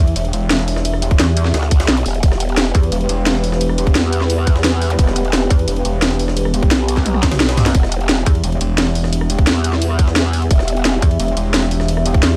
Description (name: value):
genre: dark technical drum and bass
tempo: 174 BPM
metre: 4/4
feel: straight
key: E minor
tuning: A4 = 441 Hz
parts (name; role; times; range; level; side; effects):
- dark analog pad; sustained chords; 0.0-12.4 s; B3 to E5; -25 LUFS; equal; chorus, sidechain pumping
- pulsing pluck wobble bass; bass; 0.0-12.4 s; E1 to E2; -20 LUFS; equal; chorus
- breakbeat sampler-style drum kit; drums; 0.1-12.3 s; hi-hat, ride cymbal, snare drum; -30 LUFS; equal; high-pass filter on cymbals, high-pass filter on snare, high-pass filter on hats
- drum and bass drum kit; drums; 0.2-12.3 s; hi-hat, rim click, snare drum, toms; -21 LUFS; equal; none
- electronic kick drum; drums; 1.1-12.2 s; none; -16 LUFS; equal; none
- growl bass; bass; 1.5-11.0 s; E1 to E2; -20 LUFS; equal; chorus, overdrive, sidechain pumping
- zap; sound effects; 4.9-5.0 s; none; -31 LUFS; equal; none
room: light reverb, digital ambience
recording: dark, warm production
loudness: -16 LUFS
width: mono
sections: 0.0-12.4 A section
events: drum fill 7.1-7.7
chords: 0.0 Em